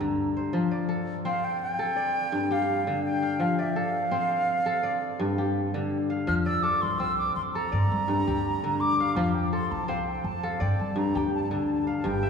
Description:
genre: west african traditional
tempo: 83 BPM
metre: 4/4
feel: straight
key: F major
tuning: A4 = 441 Hz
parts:
  - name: wooden flute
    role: melody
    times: 0.0-12.3 s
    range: E5 to F6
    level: -29 LUFS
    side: right 1 dB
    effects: none
  - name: kora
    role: arpeggios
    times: 0.0-12.3 s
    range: G2 to F5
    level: -27 LUFS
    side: left 2 dB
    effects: none
  - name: upright bass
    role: bass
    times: 0.0-0.4, 6.3-12.3 s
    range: G1 to G3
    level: -32 LUFS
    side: equal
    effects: none
room: wet cathedral reverb, RT60 4.6 s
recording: recorded in a church or concert hall, small room ambience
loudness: -24 LUFS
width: side -6 dB against mid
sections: 0.5-12.0 A section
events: flute solo 0.5-12.0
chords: 0.0 Gm; 0.5 F; 2.0 G5; 3.4 F; 4.8 G5; 6.3 F; 7.7 Gm; 9.2 F; 10.6 G5

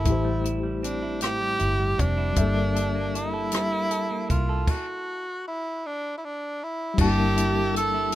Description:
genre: slow six-eight R&B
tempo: 52 BPM (dotted quarters)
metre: 6/8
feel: straight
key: G dorian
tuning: A4 = 436 Hz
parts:
  - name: breathy tenor saxophone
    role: melody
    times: 0.0-8.2 s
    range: D4 to A4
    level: -28 LUFS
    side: equal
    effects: none
  - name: semi-hollow electric guitar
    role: second line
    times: 0.0-8.2 s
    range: A2 to A4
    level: -32 LUFS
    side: right 6 dB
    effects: tape echo
  - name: mellow reed electric piano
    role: accompaniment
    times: 0.0-8.2 s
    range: A2 to A5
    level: -29 LUFS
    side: left 5 dB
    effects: overdrive, fast tremolo
  - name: vintage muted fingered electric bass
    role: bass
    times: 0.0-8.2 s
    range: F1 to C2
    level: -27 LUFS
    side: equal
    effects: none
  - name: compact cocktail drum kit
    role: drums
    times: 0.1-8.2 s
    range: crash cymbal, hi-hat, kick drum, rim click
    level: -26 LUFS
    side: equal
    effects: none
  - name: tonewheel organ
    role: sustained chords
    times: 7.0-8.2 s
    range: Bb3 to A5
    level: -36 LUFS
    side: right 1 dB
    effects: slow rotary speaker
room: small room ambience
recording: rough home demo mix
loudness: -23 LUFS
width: side -14 dB against mid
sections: 0.0-7.0 A section; 7.0-8.2 B section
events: stop 4.7-7.0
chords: 0.1 Am7; 2.4 Gm69; 4.7 N.C.; 7.0 Gm69

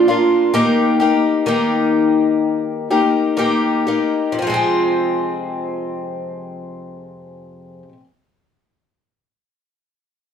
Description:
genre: folk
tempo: 59-67 BPM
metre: 4/4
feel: straight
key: F minor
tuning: A4 = 441 Hz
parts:
  - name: picked twelve-string acoustic guitar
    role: accompaniment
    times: 0.0-8.0 s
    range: F2 to Ab4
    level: -16 LUFS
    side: left 2 dB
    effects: none
room: wet studio reverb, RT60 0.5 s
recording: band playing live in one room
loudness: -15 LUFS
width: side -7 dB against mid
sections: 0.0-4.4 A section; 4.4-8.5 B section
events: slowing down 0.0-4.4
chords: 0.0 Bb; 0.5 Eb; 4.4 Fm

